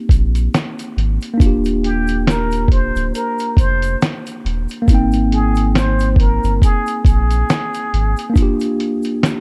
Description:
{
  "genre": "lo-fi hip hop",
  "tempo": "69 BPM",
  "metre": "4/4",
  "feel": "swing 56% on 16ths",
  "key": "Eb major",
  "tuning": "A4 = 442 Hz",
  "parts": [
    { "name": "mellow tine electric piano", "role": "accompaniment", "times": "0.0-9.4 s", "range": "Bb3 to G5", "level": "-23 LUFS", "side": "equal", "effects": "cassette tape" },
    { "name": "soft dub sub bass", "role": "bass", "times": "0.1-8.1 s", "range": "D1 to Bb1", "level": "-20 LUFS", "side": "equal", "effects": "none" },
    { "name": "lo-fi sampler-style drum kit", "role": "drums", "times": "0.1-9.4 s", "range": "hi-hat, kick drum, snare drum", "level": "-18 LUFS", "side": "equal", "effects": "none" },
    { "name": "egg shaker", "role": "percussion", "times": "0.1-9.4 s", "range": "none", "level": "-47 LUFS", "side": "equal", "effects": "none" },
    { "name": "trumpet with plunger mute", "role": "melody", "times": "1.8-8.3 s", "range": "G4 to C5", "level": "-25 LUFS", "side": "equal", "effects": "analog delay" }
  ],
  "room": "light reverb",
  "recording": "dark, warm production",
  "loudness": "-16 LUFS",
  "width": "mono",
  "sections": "0.0-9.4 A section",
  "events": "none",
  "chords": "0.0 Abmaj9; 1.4 Ebmaj9; 4.9 Abmaj9; 8.4 Bb6"
}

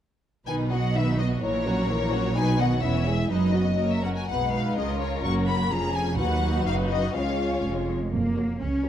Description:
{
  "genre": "quick classical-period movement for string orchestra",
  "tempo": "125 BPM",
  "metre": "2/4",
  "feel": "rubato",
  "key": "B major, F# major from 4.3 s",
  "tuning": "A4 = 440 Hz",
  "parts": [
    { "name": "clear studio violin section", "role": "melody", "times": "0.5-8.9 s", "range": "C#5 to C#6", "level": "-30 LUFS", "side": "left 5 dB", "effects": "none" },
    { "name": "warm studio violin section", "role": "second line", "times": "0.5-8.9 s", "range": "C#4 to E5", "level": "-31 LUFS", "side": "left 2 dB", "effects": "none" },
    { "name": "rich studio viola section", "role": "accompaniment", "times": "0.5-8.9 s", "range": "D#3 to F#4", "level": "-29 LUFS", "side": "equal", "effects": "none" },
    { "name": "rich studio cello section", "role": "bass", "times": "0.5-8.9 s", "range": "C#2 to C#4", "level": "-28 LUFS", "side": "right 2 dB", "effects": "none" },
    { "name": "rich studio double bass section", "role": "bass", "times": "0.5-8.9 s", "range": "E1 to D#2", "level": "-29 LUFS", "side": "right 2 dB", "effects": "none" }
  ],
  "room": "wet recital hall reverb, RT60 1.4 s",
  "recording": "dark, warm production",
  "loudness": "-22 LUFS",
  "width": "side -10 dB against mid",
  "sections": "0.5-8.1 A section",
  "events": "none",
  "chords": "0.5 B; 1.4 F#7/A#; 2.4 B; 2.8 C#m/E; 3.3 B/F#; 3.8 F#; 4.3 G#m7/B; 4.8 C#; 5.2 F#; 5.7 C#/E#; 6.2 B/D#; 7.1 C#; 8.1 F#"
}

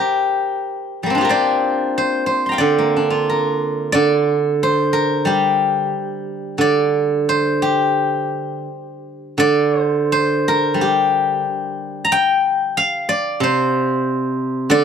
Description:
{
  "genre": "chinese traditional, Chinese solo plucked strings",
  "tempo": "90 BPM",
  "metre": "4/4",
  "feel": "rubato",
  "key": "G yu mode",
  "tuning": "A4 = 440 Hz",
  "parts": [
    { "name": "steel-string zither", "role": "solo", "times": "0.0-14.8 s", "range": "C3 to C6", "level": "-16 LUFS", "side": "equal", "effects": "none" }
  ],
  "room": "light reverb",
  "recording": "dry, close 1970s-style studio recording",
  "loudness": "-16 LUFS",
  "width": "side -7 dB against mid",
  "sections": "0.0-9.4 A section; 9.4-14.8 B section",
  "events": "none",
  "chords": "none"
}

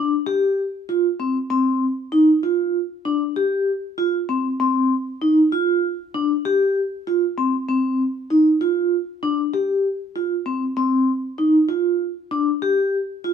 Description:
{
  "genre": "progressive instrumental, progressive",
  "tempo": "194 BPM (eighths)",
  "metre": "5/8",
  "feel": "straight",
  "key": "unclear",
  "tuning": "A4 = 441 Hz",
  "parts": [
    { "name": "vibraphone with soft mallets", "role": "solo", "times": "0.0-13.3 s", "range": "C4 to G4", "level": "-18 LUFS", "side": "equal", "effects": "none" }
  ],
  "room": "moderate studio reverb, RT60 0.8 s",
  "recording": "band playing live in one room",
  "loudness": "-18 LUFS",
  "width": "side -7 dB against mid",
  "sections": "0.0-10.8 A section; 10.8-13.3 B section",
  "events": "none",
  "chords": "none"
}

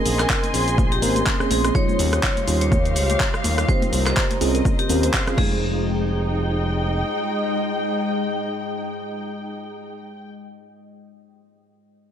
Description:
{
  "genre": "deep house",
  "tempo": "124 BPM",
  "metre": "4/4",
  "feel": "swing 57% on 16ths",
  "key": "F minor",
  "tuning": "A4 = 438 Hz",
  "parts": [
    { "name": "vibraphone with hard mallets", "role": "melody", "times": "0.0-9.9 s", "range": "G4 to Db5", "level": "-29 LUFS", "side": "equal", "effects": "dub echo" },
    { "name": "deep dark ambient pad", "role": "sustained chords", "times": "0.0-9.9 s", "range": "G3 to G5", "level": "-29 LUFS", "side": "left 1 dB", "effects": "chorus, built-in reverb, vintage 12-bit sampler grit, sidechain pumping" },
    { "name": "mellow FM electric piano", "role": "stabs", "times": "0.0-9.9 s", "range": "G3 to Bb4", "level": "-27 LUFS", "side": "right 1 dB", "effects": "chorus, phaser, sidechain pumping, tape echo" },
    { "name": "dark studio string section", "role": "texture", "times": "0.0-10.3 s", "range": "Ab3 to C6", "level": "-29 LUFS", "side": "equal", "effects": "sidechain pumping" },
    { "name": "rich chamber violin section", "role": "texture", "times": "0.0-5.6 s", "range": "Eb5 to C6", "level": "-35 LUFS", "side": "left 2 dB", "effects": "sidechain pumping" },
    { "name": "smooth synth bass", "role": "bass", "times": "0.1-7.0 s", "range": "F1 to Eb2", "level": "-23 LUFS", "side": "equal", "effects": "sidechain pumping" },
    { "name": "deep house drum kit", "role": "drums", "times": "0.1-5.5 s", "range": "cabasa, crash cymbal, handclaps, hi-hat, rim click", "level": "-25 LUFS", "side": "equal", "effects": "none" },
    { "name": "congas and bongos", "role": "percussion", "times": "0.1-5.6 s", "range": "none", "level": "-32 LUFS", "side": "left 4 dB", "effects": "none" },
    { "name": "electronic kick drum", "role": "drums", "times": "0.3-5.5 s", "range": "none", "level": "-22 LUFS", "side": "equal", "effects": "overdrive" }
  ],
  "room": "light reverb, studio reverb",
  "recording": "none",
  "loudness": "-19 LUFS",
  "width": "side -9 dB against mid",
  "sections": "0.0-5.6 A section; 5.6-9.5 B section",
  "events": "drop 0.0-5.6",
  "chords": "0.0 Bbm9; 1.7 Eb9; 3.7 Cm7; 4.7 Eb13sus4; 5.4 Fm9"
}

